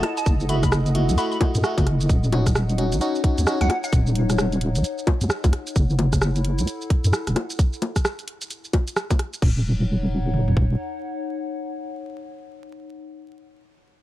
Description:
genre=UK garage, two-step garage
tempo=131 BPM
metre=4/4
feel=swing 62% on 16ths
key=unclear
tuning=A4 = 440 Hz
part: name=glassy wavetable pluck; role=melody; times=0.0-3.9 s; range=Gb5 to Cb6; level=-30 LUFS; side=equal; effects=chorus, tape echo
part: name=warm analog pad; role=sustained chords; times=0.0-5.8 s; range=Eb5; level=-40 LUFS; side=right 4 dB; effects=chorus, sidechain pumping
part: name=FM electric piano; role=stabs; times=0.0-3.7 s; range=A3 to Gb4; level=-27 LUFS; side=equal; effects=chorus, tape echo
part: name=deep soft wobble bass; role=bass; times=0.0-10.8 s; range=Eb1 to Gb2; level=-20 LUFS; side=equal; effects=chorus
part: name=garage drum kit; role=drums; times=0.0-9.5 s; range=bongos, crash cymbal, hi-hat, rim click, shaker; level=-26 LUFS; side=equal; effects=none
part: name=warbly tape-like pad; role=texture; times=0.0-13.1 s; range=Eb4 to Gb5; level=-32 LUFS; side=left 4 dB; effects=chorus, built-in reverb, sidechain pumping
part: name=garage drum kit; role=drums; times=0.3-10.7 s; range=kick drum, toms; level=-20 LUFS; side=equal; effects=none
room=little or no reverb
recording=vinyl crackle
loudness=-19 LUFS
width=side -15 dB against mid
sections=0.0-9.4 A section; 9.4-13.1 B section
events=drop 0.0-9.4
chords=0.0 Gbm7; 2.1 Ebm7; 5.8 Gbm7; 9.4 Ebm7

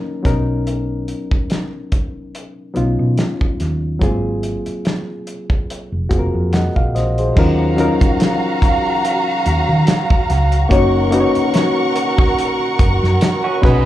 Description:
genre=lush 1970s-style soul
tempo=72 BPM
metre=4/4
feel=swing 54% on 16ths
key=Eb minor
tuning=A4 = 440 Hz
part: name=reed electric piano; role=accompaniment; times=0.0-13.9 s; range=A#2 to Gb5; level=-20 LUFS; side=left 2 dB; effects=slapback echo
part: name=cloth-damped thuddy drum kit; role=drums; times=0.2-13.8 s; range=crash cymbal, hi-hat, kick drum, snare drum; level=-17 LUFS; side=equal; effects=none
part: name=hollow-body short-scale fingered electric bass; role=bass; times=0.3-13.9 s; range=F1 to Eb3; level=-17 LUFS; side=equal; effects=none
part: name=warm studio violin section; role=second line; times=7.4-13.9 s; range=Gb4 to Db6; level=-20 LUFS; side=right 1 dB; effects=slapback echo
part: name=mellow French horn section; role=sustained chords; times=7.4-13.9 s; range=Bb2 to F5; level=-24 LUFS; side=right 2 dB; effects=none
part: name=electric guitar through a small old amp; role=riff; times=13.4-13.9 s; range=Db4 to Ab4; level=-21 LUFS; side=right 6 dB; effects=none
room=light reverb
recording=live gig heard through the venue's PA, club reverb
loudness=-14 LUFS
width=side -13 dB against mid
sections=0.0-7.4 A section; 7.4-13.9 B section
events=none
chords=0.3 Bmaj9; 4.0 Ab13; 7.4 Ebm9; 10.7 Gb6

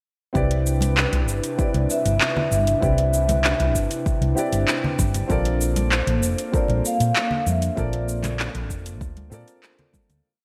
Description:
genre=sunset chillout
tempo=97 BPM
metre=4/4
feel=straight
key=C major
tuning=A4 = 440 Hz
part: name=dark concert grand piano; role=accompaniment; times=0.3-10.3 s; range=C4 to D5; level=-32 LUFS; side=equal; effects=delay
part: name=electronic kick drum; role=drums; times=0.3-10.1 s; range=none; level=-27 LUFS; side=equal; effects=overdrive
part: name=airy breathy pad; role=sustained chords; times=0.4-10.2 s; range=C3 to B4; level=-32 LUFS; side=equal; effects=chorus
part: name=hollow-body short-scale fingered electric bass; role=bass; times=0.4-10.2 s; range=F1 to Bb2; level=-25 LUFS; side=equal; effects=none
part: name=deep house drum kit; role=drums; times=0.4-10.2 s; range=cabasa, handclaps, hi-hat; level=-28 LUFS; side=equal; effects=overdrive, gated reverb
part: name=congas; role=percussion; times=0.8-10.2 s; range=none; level=-33 LUFS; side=equal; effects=none
part: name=vibraphone with medium mallets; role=melody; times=1.0-8.4 s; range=B4 to F5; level=-29 LUFS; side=equal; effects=delay
room=moderate lush hall reverb, RT60 1.9 s, digital ambience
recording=bright 1980s-style digital production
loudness=-22 LUFS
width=mono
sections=0.4-10.2 groove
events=fade-out 6.9-10.2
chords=0.4 Cmaj9; 5.3 Bbmaj7

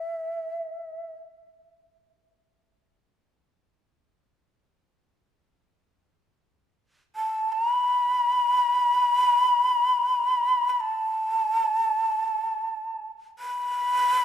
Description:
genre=japanese traditional, Japanese chamber music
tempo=free time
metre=none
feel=none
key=unclear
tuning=A4 = 437 Hz
part: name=breathy hollow shakuhachi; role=solo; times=0.0-1.1, 7.2-14.2 s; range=E5 to B5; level=-22 LUFS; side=equal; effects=none
room=moderate concert hall reverb, RT60 2.4 s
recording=minimal, uncompressed stereo recording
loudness=-22 LUFS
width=side -9 dB against mid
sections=0.0-5.2 A section; 5.2-14.2 A section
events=none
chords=none

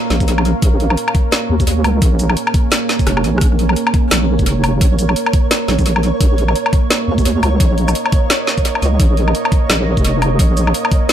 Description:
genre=half-time drum and bass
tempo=172 BPM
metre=4/4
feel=swing 59% on 16ths, half-time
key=Bb minor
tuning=A4 = 439 Hz
part: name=deep dark ambient pad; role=sustained chords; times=0.0-11.1 s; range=Bb3 to Ab5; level=-20 LUFS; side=right 3 dB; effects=chorus, built-in reverb, sidechain pumping
part: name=deep soft wobble bass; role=bass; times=0.1-10.7 s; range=F1 to Eb2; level=-15 LUFS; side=equal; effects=chorus, tube saturation
part: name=drum and bass drum kit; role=drums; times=0.1-11.1 s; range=hi-hat, rim click, shaker, snare drum, woodblock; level=-18 LUFS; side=left 1 dB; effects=overdrive, studio ambience, tape echo
part: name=electronic kick drum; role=drums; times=0.2-11.0 s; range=none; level=-14 LUFS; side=equal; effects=overdrive, studio ambience
part: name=flickering grainy texture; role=texture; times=3.9-11.1 s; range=Db5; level=-25 LUFS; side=right 3 dB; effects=built-in reverb
room=little or no reverb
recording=echo-heavy mix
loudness=-12 LUFS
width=side -10 dB against mid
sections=0.0-11.1 A section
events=kick drops out 3.1-3.4; drum fill 3.1-3.4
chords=0.0 Bbm

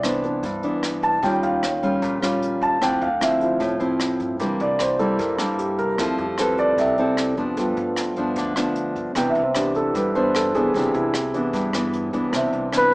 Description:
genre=bossa nova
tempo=151 BPM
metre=4/4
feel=straight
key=C major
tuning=A4 = 440 Hz
part: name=dark concert grand piano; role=accompaniment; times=0.0-12.9 s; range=E3 to A5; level=-23 LUFS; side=right 1 dB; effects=none
part: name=nylon-string guitar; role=accompaniment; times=0.0-12.9 s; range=G2 to A4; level=-23 LUFS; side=equal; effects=none
part: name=upright bass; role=bass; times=0.0-12.9 s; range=A1 to G2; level=-36 LUFS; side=equal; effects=none
part: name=jazz brush drum kit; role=drums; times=0.0-12.9 s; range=hi-hat, kick drum, rim click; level=-31 LUFS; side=equal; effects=none
part: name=mellow flugelhorn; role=melody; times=12.8-12.9 s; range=B4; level=-14 LUFS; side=equal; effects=none
room=light reverb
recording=small speaker sound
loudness=-19 LUFS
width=side -23 dB against mid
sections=0.0-12.3 A section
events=grand piano solo 0.0-12.3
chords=0.0 Cmaj9; 1.2 Eb9; 2.8 Dm9; 4.4 C7; 6.0 Fmaj7; 7.6 G7; 9.2 Cmaj9

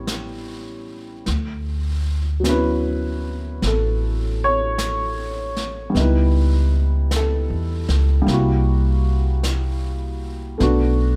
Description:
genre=jazz ballad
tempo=51 BPM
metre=4/4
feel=swing 66% on 8ths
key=D major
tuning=A4 = 440 Hz
part: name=warm upright piano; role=accompaniment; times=0.0-11.2 s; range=F#3 to C#5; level=-26 LUFS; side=equal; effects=none
part: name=upright bass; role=bass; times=0.0-11.2 s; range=A1 to E2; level=-22 LUFS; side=equal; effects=none
part: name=jazz brush drum kit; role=drums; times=0.1-11.2 s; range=brushed snare drum, hi-hat, snare drum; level=-34 LUFS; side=equal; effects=none
room=little or no reverb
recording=none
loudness=-21 LUFS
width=mono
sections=0.0-1.3 A section; 1.3-11.2 B section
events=none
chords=0.0 A9; 1.3 Dmaj13; 6.0 C#m7b5; 8.3 C7#11; 10.6 Bm7

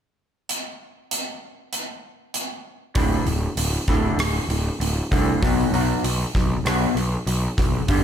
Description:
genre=quiet-loud alternative rock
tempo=97 BPM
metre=4/4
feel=straight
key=D major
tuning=A4 = 439 Hz
part: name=huge arena drum kit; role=drums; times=0.5-8.0 s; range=hi-hat, kick drum, rim click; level=-24 LUFS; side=equal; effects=none
part: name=electric guitar through a small old amp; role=arpeggios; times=2.9-8.0 s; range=D2 to B3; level=-25 LUFS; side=equal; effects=analog chorus
part: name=fuzz picked electric bass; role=bass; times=3.0-8.0 s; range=D1 to C2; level=-23 LUFS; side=equal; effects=overdrive
room=light reverb, studio ambience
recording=none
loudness=-20 LUFS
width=side -9 dB against mid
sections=0.5-3.0 A section; 3.0-8.0 B section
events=none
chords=0.5 N.C.; 3.0 D5; 5.4 B5

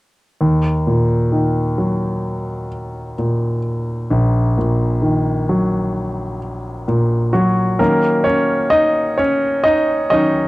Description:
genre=pop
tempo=65 BPM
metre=4/4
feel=straight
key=Eb minor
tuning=A4 = 440 Hz
part: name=warm concert grand piano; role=accompaniment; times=0.4-10.5 s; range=Bb1 to Eb5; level=-15 LUFS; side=equal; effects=none
room=moderate booth ambience, RT60 0.3 s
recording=home recording on cassette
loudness=-15 LUFS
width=side -19 dB against mid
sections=0.4-7.8 A section; 7.8-10.5 B section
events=grand piano solo 7.8-10.5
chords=0.4 Ebm; 7.8 Ebm7

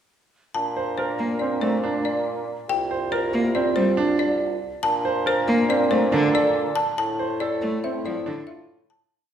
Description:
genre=classical, minimalist pattern music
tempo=140 BPM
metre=5/4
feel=straight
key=Bb lydian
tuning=A4 = 442 Hz
part: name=folk marimba with hard mallets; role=melody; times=0.5-9.2 s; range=C5 to A5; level=-25 LUFS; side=left 1 dB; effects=none
part: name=mellow hollow wooden-headed alto flute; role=second line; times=0.6-8.9 s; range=D4 to F4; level=-31 LUFS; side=right 1 dB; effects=none
part: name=warm bassoon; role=bass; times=0.6-9.0 s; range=C2 to Bb2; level=-28 LUFS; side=left 1 dB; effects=none
part: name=bright baby grand piano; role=arpeggios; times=0.8-8.8 s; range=C4 to C5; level=-26 LUFS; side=right 4 dB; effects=none
part: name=rich cello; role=accompaniment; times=1.2-8.4 s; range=D3 to Bb3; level=-26 LUFS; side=equal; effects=none
room=wet scoring stage reverb, RT60 1.7 s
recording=recorded in a church or concert hall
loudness=-20 LUFS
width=side -9 dB against mid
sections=0.6-9.1 A section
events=fade-out 7.0-9.1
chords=0.6 Bb; 2.7 C7sus4; 4.8 Bbmaj7; 7.0 Fmaj7/A

